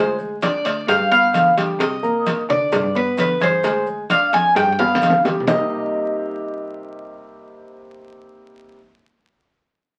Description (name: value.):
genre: latin, Cuban son and guajira.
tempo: 131 BPM.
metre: 4/4.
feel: straight.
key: unclear.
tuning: A4 = 440 Hz.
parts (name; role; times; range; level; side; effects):
Cuban tres; melody; 0.0-8.8 s; B4 to Ab5; -20 LUFS; equal; none.
nylon-string guitar; second line; 0.0-0.2, 5.5-8.8 s; Eb4 to F4; -38 LUFS; equal; none.
dark concert grand piano; arpeggios; 0.0-8.8 s; C3 to Ab6; -27 LUFS; equal; none.
clear cello; bass; 0.0-8.8 s; D2 to D3; -32 LUFS; equal; none.
congas; percussion; 0.2-5.6 s; none; -29 LUFS; equal; none.
maracas; percussion; 0.2-5.6 s; none; -50 LUFS; equal; none.
cowbell and bongos; percussion; 0.4-5.6 s; none; -25 LUFS; equal; none.
room: moderate studio reverb, RT60 0.5 s.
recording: very old 78 rpm record, vinyl crackle.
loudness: -18 LUFS.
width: mono.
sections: 0.0-5.5 A section; 5.5-9.2 B section.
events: drum fill 4.8-5.5.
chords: 0.0 N.C.; 0.9 G7; 1.8 Cm7; 2.7 G; 3.6 Ddim; 4.6 G7; 5.5 Cm7.